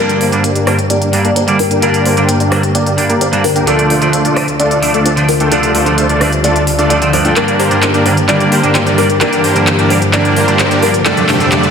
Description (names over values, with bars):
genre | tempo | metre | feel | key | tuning
EDM, festival progressive house | 130 BPM | 4/4 | straight | G minor | A4 = 440 Hz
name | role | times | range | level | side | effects
kalimba | melody | 0.0-11.7 s | A4 to D5 | -18 LUFS | left 2 dB | tape echo
clean electric guitar | accompaniment | 0.0-11.7 s | G2 to D4 | -16 LUFS | right 2 dB | analog chorus
dark studio string section | sustained chords | 0.0-11.7 s | D2 to G4 | -16 LUFS | left 1 dB | vintage 12-bit sampler grit, low-pass filter
supersaw chords | riff | 0.0-11.7 s | A3 to G5 | -15 LUFS | equal | low-pass filter
riser | sound effects | 0.0-11.7 s | none | -23 LUFS | right 1 dB | none
big-room dance drum kit | drums | 0.1-11.7 s | handclaps, hi-hat, rim click | -18 LUFS | equal | none
room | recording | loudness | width
wet lush hall reverb, RT60 1.8 s, digital ambience | dense, heavily limited modern master | -9 LUFS | side -6 dB against mid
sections
0.0-11.7 A section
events
build-up 0.0-11.7; riser 0.0-11.7; filter sweep on supersaw synth 0.0-11.7; filter sweep on string section 0.0-11.7; drum fill 7.4-11.7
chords
0.0 Gm; 3.7 Dm; 7.4 Gm; 11.1 Fadd9